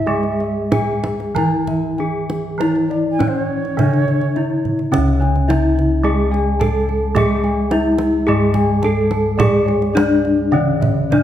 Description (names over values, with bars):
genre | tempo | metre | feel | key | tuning
Javanese gamelan | 91-107 BPM | 4/4 | straight | C# pelog | A4 = 440 Hz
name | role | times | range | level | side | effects
gamelan-type bronze metallophone | melody | 0.0-11.2 s | C#4 to A4-20c | -19 LUFS | left 2 dB | none
bansuri | second line | 0.0-4.8 s | C#5 to G#5-33c | -25 LUFS | right 7 dB | none
gamelan-type bronze metallophone | accompaniment | 0.0-11.2 s | C#3 to G#3-30c | -22 LUFS | right 3 dB | none
gamelan-type bossed gongs | bass | 0.0-11.2 s | C#2 to G#4-30c | -21 LUFS | left 1 dB | none
gamelan-type bossed gongs | arpeggios | 0.1-11.2 s | C#5 to A5-20c | -26 LUFS | left 4 dB | none
kendang | percussion | 0.2-11.2 s | none | -24 LUFS | right 2 dB | none
gamelan-type bronze metallophone | arpeggios | 4.9-11.2 s | C#5 to A5-20c | -30 LUFS | right 4 dB | none
room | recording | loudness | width
moderate recital hall reverb, RT60 1.6 s | dark, warm production | -15 LUFS | side -11 dB against mid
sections
0.0-4.9 A section; 4.9-11.2 B section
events
none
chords
none